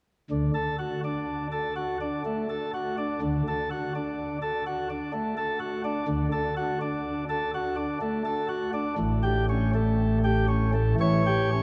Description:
classical, chorale-style piece for pipe organ; 62 BPM; 3/4; rubato; D major; A4 = 440 Hz
chamber organ, principal chorus; solo; 0.3-11.6 s; A1 to C#5; -28 LUFS; equal
wet cathedral reverb, RT60 6.5 s; -28 LUFS; mono
0.3-11.6 A section
0.3 D; 9.0 A7
| 0.29 1.27 2.25 | 3.22 4.19 5.14 | 6.09 7.05 8.02 | 8.98 9.98 10.98

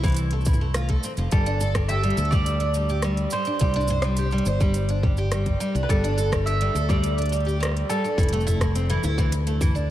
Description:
folktronica; 105 BPM; 4/4; straight; A4 = 438 Hz
picked twelve-string acoustic guitar; arpeggios; 0.0-9.9 s; E3 to C5; -27 LUFS; right 1 dB; analog delay
fingered electric bass; bass; 0.0-9.9 s; F1 to D2; -24 LUFS; equal
electronic kick drum; drums; 0.0-9.7 s; -22 LUFS; equal
organic electronic drum kit; drums; 0.0-9.9 s; hi-hat, rim click, shaker, toms; -32 LUFS; right 1 dB
mandolin; melody; 1.3-8.7 s; A4 to E5; -30 LUFS; right 1 dB; vintage 12-bit sampler grit, analog delay
moderate cathedral reverb, RT60 5.5 s; dreamy mix soaked in reverb; -20 LUFS; side -13 dB against mid
0.0-9.9 A section
0.0 Fmaj7; 1.3 Gsus2; 3.6 Csus2; 5.9 Gsus2; 8.2 Fmaj7; 9.3 Dsus2
0.18 0.75 | 1.32 1.89 2.46 3.04 | 3.61 4.18 4.75 5.32 | 5.89 6.46 7.04 7.61 | 8.18 8.75 9.32 9.89

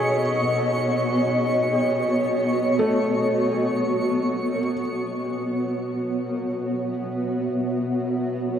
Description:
ambient; free time; B mixolydian; A4 = 439 Hz
granular cloud pad; sustained chords; 0.0-8.6 s; B3 to E5; -23 LUFS; equal; built-in reverb
felt-muted upright piano; arpeggios; 0.0-4.8 s; A3 to A4; -29 LUFS; left 1 dB; diffuse ambient delay
dark chamber cello section; bass; 0.0-8.6 s; B2; -31 LUFS; equal
twinkling granular texture; texture; 0.0-4.7 s; C#6; -32 LUFS; equal; built-in reverb
organ-like drone; drone; 5.5-8.6 s; B3; -34 LUFS; right 2 dB; ensemble chorus, built-in reverb
wet huge ambient reverb, RT60 7.8 s; cassette tape; -21 LUFS; side -8 dB against mid
0.0-4.7 A section; 4.7-8.6 B section
0.0 B9; 4.7 Bsus4
free time

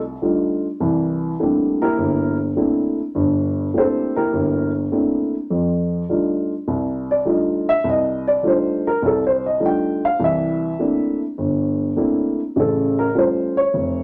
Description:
solo jazz; 102 BPM; 4/4; swing 69% on 8ths; C mixolydian; A4 = 437 Hz
dark upright piano; solo; 0.0-14.0 s; E#1 to G5; -20 LUFS; equal
moderate club reverb, RT60 0.7 s; -20 LUFS; mono
0.0-14.0 A section
upright piano solo 0.0-14.0
0.0 F13; 0.8 C13; 5.5 F13; 10.2 C13; 12.6 Aaug7
0.22 | 0.81 1.39 1.98 2.57 | 3.15 3.74 4.33 4.92 | 5.50 6.09 6.67 7.26 | 7.85 8.44 9.02 9.61 | 10.20 10.79 11.38 11.97 | 12.56 13.15 13.74

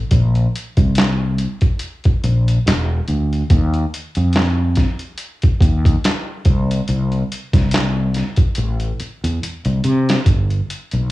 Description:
R&B, neo-soul; 71 BPM; 4/4; swing 56% on 16ths; A4 = 440 Hz
fretless electric bass; bass; 0.0-11.1 s; E1 to C3; -16 LUFS; equal
boom bap sampler-style drum kit; drums; 0.1-11.1 s; handclaps, hi-hat, kick drum, snare drum; -17 LUFS; equal
little or no reverb; home recording on cassette, studio reverb; -15 LUFS; side -17 dB against mid
0.0-10.3 A section
drum fill 8.6-10.3
| 0.12 0.96 1.81 2.65 | 3.50 4.34 5.19 6.03 | 6.88 7.72 8.57 9.41 | 10.26 11.10

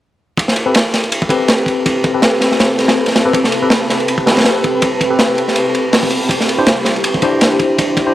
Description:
drum and bass, jungle; 162 BPM; 4/4; swing 55% on 16ths; A minor; A4 = 440 Hz
granular cloud pad; sustained chords; 1.1-8.1 s; C4 to C5; -19 LUFS; equal; built-in reverb
crunchy breakbeat drum kit; drums; 0.4-8.1 s; hi-hat, kick drum, ride cymbal, snare drum; -14 LUFS; equal; high-pass filter on kick, high-pass filter on cymbals, high-pass filter on hats, high-pass filter on snare, high-pass filter on room
tine electric piano; stabs; 0.7-8.1 s; C4 to C5; -16 LUFS; left 2 dB; slow stereo tremolo, low-pass filter, dub echo
light reverb, small room ambience; dry, gritty hardware recording; -11 LUFS; side -14 dB against mid
0.4-8.1 A section
filter sweep on tine electric piano 0.4-8.1
0.4 Am9; 6.3 D9sus4
| 0.38 0.74 1.11 1.49 | 1.86 2.23 2.60 2.97 | 3.34 3.71 4.08 4.45 | 4.82 5.19 5.56 5.93 | 6.30 6.67 7.04 7.41 | 7.78

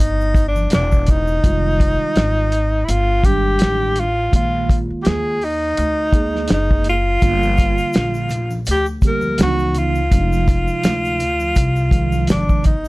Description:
hip hop, jazz-hop; 83 BPM; 4/4; swing 57% on 16ths; F dorian; A4 = 439 Hz
breathy tenor saxophone; melody; 0.0-12.9 s; D4 to Bb4; -20 LUFS; equal
upright bass; bass; 0.0-12.9 s; E1 to Eb2; -21 LUFS; equal
tube shaker and congas; percussion; 0.0-1.4, 7.2-12.9 s; -32 LUFS; left 1 dB
cloth-damped thuddy drum kit; drums; 0.3-12.8 s; hi-hat, kick drum, snare drum; -16 LUFS; equal
mellow tine electric piano; accompaniment; 1.4-12.7 s; C3 to Ab4; -23 LUFS; right 3 dB; slow stereo tremolo
light reverb; -15 LUFS; side -22 dB against mid
0.0-1.4 A section; 1.4-12.9 B section
tenor saxophone solo 0.0-1.4
0.0 N.C.; 1.4 Fm9; 4.3 Bb7sus4; 7.2 Gm7; 9.4 Dbm9; 10.1 Fm7
0.72 | 1.44 2.16 2.88 3.61 | 4.33 5.05 5.78 6.50 | 7.22 7.95 8.67 9.39 | 10.11 10.84 11.56 12.28

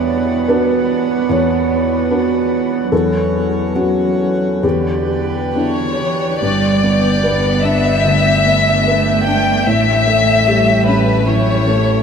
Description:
neoclassical piano and strings; 74 BPM; 4/4; rubato; A4 = 441 Hz
dark cello; second line; 0.0-12.0 s; D3 to B3; -20 LUFS; right 5 dB
felt-muted upright piano; accompaniment; 0.0-12.0 s; E2 to C#5; -17 LUFS; left 1 dB
hand-pumped harmonium; sustained chords; 0.0-12.0 s; C#4 to G5; -26 LUFS; right 3 dB
warm chamber violin section; melody; 5.6-12.0 s; B4 to G5; -15 LUFS; left 3 dB
warm double bass; bass; 6.4-12.0 s; G1 to A1; -18 LUFS; equal
wet cathedral reverb, RT60 6.2 s; in a vast, echoing space; -12 LUFS; side -6 dB against mid
0.0-6.4 A section; 6.4-12.0 B section
0.0 Bmadd9/E; 2.9 F#m7/E; 4.6 Em7; 6.4 G6; 9.7 A7
0.48 1.30 2.10 | 2.92 3.75 4.63 5.55 | 6.43 7.24 8.06 8.87 | 9.67 10.47 11.28

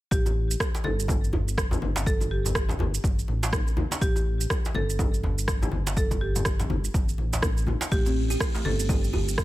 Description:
afro house; 123 BPM; 4/4; swing 59% on 16ths; A4 = 440 Hz
marimba with medium hard mallets; melody; 0.1-9.4 s; G4 to A4; -34 LUFS; right 1 dB; tape echo
dark detuned saw bass; bass; 0.1-9.4 s; G1 to A1; -28 LUFS; equal; sidechain pumping
electronic kick drum; drums; 0.1-9.4 s; -27 LUFS; equal; overdrive, studio reverb
electronic shaker and rim click; drums; 0.1-9.4 s; -31 LUFS; right 2 dB; overdrive, studio reverb
congas; percussion; 0.3-9.2 s; -33 LUFS; left 3 dB
djembe; percussion; 0.3-9.3 s; -33 LUFS; right 1 dB
buzzing kalimba; arpeggios; 7.9-9.3 s; A3 to G4; -31 LUFS; right 1 dB; sidechain pumping
small room ambience; -23 LUFS; side -16 dB against mid
0.1-9.4 A section
0.1 A7(no3)
| 0.12 0.60 1.09 1.58 | 2.07 2.55 3.04 3.53 | 4.02 4.50 4.99 5.48 | 5.97 6.46 6.94 7.43 | 7.92 8.41 8.89 9.38

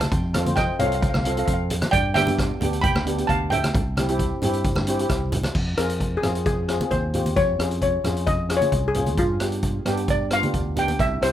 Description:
calypso; 132 BPM; 4/4; straight; A4 = 440 Hz
steel pan; melody; 0.0-11.3 s; F4 to B5; -24 LUFS; equal; tape echo
steel pan; accompaniment; 0.0-11.3 s; B3 to C5; -28 LUFS; equal
fingered electric bass; bass; 0.0-11.3 s; C2 to G2; -27 LUFS; equal
street-band drum kit; drums; 0.0-11.3 s; crash cymbal, hi-hat, kick drum, rim click; -26 LUFS; equal
congas; percussion; 0.0-11.0 s; -28 LUFS; right 1 dB
light reverb; rough home demo mix; -20 LUFS; side -11 dB against mid
0.0-5.6 A section; 5.6-11.3 B section
steel pan solo 5.6-11.3
0.1 F; 1.9 G; 3.7 C; 5.6 Fm7; 7.4 Db/F; 9.2 G7
| 0.12 0.57 1.02 1.48 | 1.93 2.38 2.83 3.29 | 3.74 4.19 4.65 5.10 | 5.55 6.01 6.46 6.92 | 7.37 7.82 8.28 8.73 | 9.18 9.63 10.09 10.54 | 10.99

